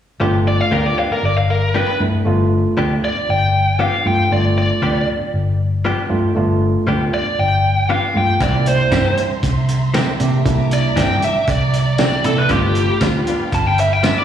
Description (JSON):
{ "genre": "straight-eighth soul blues", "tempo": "117 BPM", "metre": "4/4", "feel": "straight", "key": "G mixolydian", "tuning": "A4 = 438 Hz", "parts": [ { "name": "barky tine electric piano", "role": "accompaniment", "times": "0.2-13.3 s", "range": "G3 to G4", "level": "-21 LUFS", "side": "right 3 dB", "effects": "slapback echo" }, { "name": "direct-recorded clean electric guitar", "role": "stabs", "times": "0.2-14.2 s", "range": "E3 to G4", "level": "-23 LUFS", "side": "left 3 dB", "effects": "spring reverb, slapback echo" }, { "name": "vintage muted fingered electric bass", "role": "bass", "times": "0.2-14.1 s", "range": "G1 to C3", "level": "-18 LUFS", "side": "left 1 dB", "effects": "none" }, { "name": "biting lead guitar", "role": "melody", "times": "0.5-14.2 s", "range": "G4 to A5", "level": "-18 LUFS", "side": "equal", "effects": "overdrive, slapback echo" }, { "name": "dark symphonic string section", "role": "sustained chords", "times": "8.4-14.2 s", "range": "E5 to D6", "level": "-28 LUFS", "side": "left 1 dB", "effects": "none" }, { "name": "cloth-damped thuddy drum kit", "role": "drums", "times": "8.4-14.2 s", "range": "hi-hat, kick drum, snare drum, tambourine", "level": "-22 LUFS", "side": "right 1 dB", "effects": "slapback echo" } ], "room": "light reverb, small room ambience", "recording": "live gig heard through the venue's PA, recital hall reverb, faint mains hum", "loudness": "-14 LUFS", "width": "side -9 dB against mid", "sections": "0.2-14.2 A section", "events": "none", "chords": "0.2 G7; 8.4 C7; 12.5 G7" }